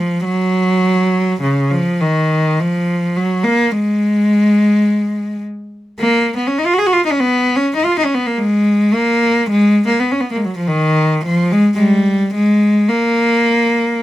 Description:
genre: classical, free, expressive piece for unaccompanied cello.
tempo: 50-56 BPM.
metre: 4/4.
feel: rubato.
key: unclear.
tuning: A4 = 440 Hz.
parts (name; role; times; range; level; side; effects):
rich cello; solo; 0.0-14.0 s; C#3 to G#4; -12 LUFS; equal; none.
room: little or no reverb.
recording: close, detailed microphones.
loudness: -12 LUFS.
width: side -14 dB against mid.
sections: 0.0-14.0 A section.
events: none.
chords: none.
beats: 0.26 1.42 | 2.58 3.69 4.82 5.98 | 7.17 8.34 9.47 10.63 | 11.75 12.84 13.92.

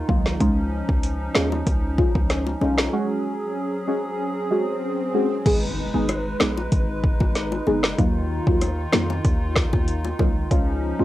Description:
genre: dancehall.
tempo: 95 BPM.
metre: 4/4.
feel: straight.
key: G# dorian.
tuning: A4 = 440 Hz.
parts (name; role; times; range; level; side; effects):
hollow soft pad; sustained chords; 0.0-11.0 s; D#3 to B4; -28 LUFS; equal; chorus, sidechain pumping, cassette tape.
hard-hitting 808-style bass; bass; 0.0-11.0 s; F#1 to E#2; -27 LUFS; equal; none.
deep mellow chord stab; accompaniment; 0.1-11.0 s; F#3 to G#4; -24 LUFS; equal; chorus, phaser, cassette tape.
afro-pop drum kit; drums; 0.1-10.7 s; crash cymbal, hi-hat, kick drum, rim click, snare drum; -22 LUFS; equal; overdrive, vintage 12-bit sampler grit, cassette tape.
bongos; percussion; 1.3-10.3 s; none; -31 LUFS; left 4 dB; none.
swell and impact; sound effects; 4.0-8.0 s; none; -32 LUFS; left 1 dB; none.
room: light reverb.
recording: home recording on cassette.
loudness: -20 LUFS.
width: side -15 dB against mid.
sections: 0.0-5.5 A section; 5.5-11.0 B section.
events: break 2.9-5.5; swell 4.0-5.5; impact 5.5-8.0.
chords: 0.4 C#add9; 2.9 F#sus2; 5.5 G#m; 8.0 D#madd9; 10.5 C#add9.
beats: | 0.41 1.04 1.67 2.30 | 2.93 3.56 4.20 4.83 | 5.46 6.09 6.72 7.35 | 7.98 8.62 9.25 9.88 | 10.51.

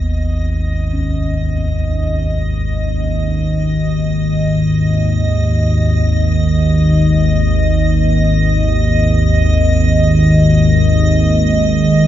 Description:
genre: dark ambient drone.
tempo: free time.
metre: none.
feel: none.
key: G# minor.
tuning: A4 = 440 Hz.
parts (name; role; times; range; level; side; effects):
gamelan-type bossed gongs; arpeggios; 0.0-8.6 s; C#2 to C#4; -32 LUFS; equal; none.
analog drone; drone; 0.0-12.1 s; G#1 to D#2; -12 LUFS; equal; chorus.
icy glass pad; texture; 0.0-12.1 s; D#5; -21 LUFS; equal; chorus, built-in reverb, shimmer reverb.
room: wet cathedral reverb, RT60 5.6 s.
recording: nothing above 10.9 kHz.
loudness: -12 LUFS.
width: side -11 dB against mid.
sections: 0.0-12.1 A section.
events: none.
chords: 0.0 G#5.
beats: free time.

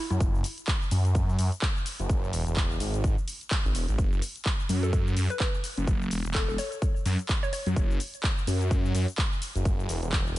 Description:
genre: bass house.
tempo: 127 BPM.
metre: 4/4.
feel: swing 58% on 16ths.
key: unclear.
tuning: A4 = 440 Hz.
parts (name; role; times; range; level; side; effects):
hollow square pluck; melody; 0.0-0.2, 4.8-7.6 s; E4 to C#5; -36 LUFS; equal; chorus, ping-pong delay.
phased detuned saw bass; bass; 0.1-10.4 s; E1 to F#2; -26 LUFS; equal; phaser, tube saturation, sidechain pumping.
big-room dance drum kit; drums; 0.1-10.4 s; handclaps, hi-hat, shaker; -34 LUFS; equal; studio reverb.
electronic kick drum; drums; 0.2-10.2 s; none; -27 LUFS; equal; studio reverb.
room: little or no reverb.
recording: nothing above 10.8 kHz.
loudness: -25 LUFS.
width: side -16 dB against mid.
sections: 0.0-10.4 A section.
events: none.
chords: 0.0 Esus2.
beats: | 0.20 0.68 1.15 1.62 | 2.10 2.57 3.04 3.51 | 3.98 4.46 4.93 5.40 | 5.87 6.35 6.82 7.29 | 7.76 8.24 8.71 9.18 | 9.65 10.13.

